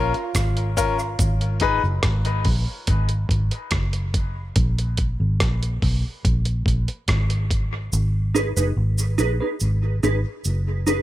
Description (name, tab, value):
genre	dub reggae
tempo	71 BPM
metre	4/4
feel	straight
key	unclear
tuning	A4 = 440 Hz
part	clear trombone	second line	0.0-0.7 s	F4	-36 LUFS	right 4 dB	dub echo
part	bright upright piano	stabs	0.0-1.8 s	Db4 to Cb5	-26 LUFS	left 6 dB	dub echo
part	vintage muted fingered electric bass	bass	0.0-11.0 s	Gb1 to Cb2	-22 LUFS	equal	none
part	dusty soul sampler-style drum kit	drums	0.1-7.7 s	hi-hat, kick drum, rim click	-23 LUFS	equal	overdrive
part	cabasa	percussion	0.4-1.4, 7.9-11.0 s	none	-30 LUFS	right 3 dB	none
part	mellow electric guitar	accompaniment	8.3-11.0 s	Eb4 to Cb5	-24 LUFS	right 2 dB	analog chorus, dub echo
room	little or no reverb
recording	none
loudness	-20 LUFS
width	side -14 dB against mid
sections	0.0-11.0 A section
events	break 0.0-7.9; part muted 1.2-7.9, 7.9-11.0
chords	0.0 Bbm; 1.2 N.C.; 4.6 Absus2; 7.9 Abm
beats	0.35 | 1.19 2.03 2.87 3.71 | 4.56 5.40 6.24 7.08 | 7.92 8.77 9.61 10.45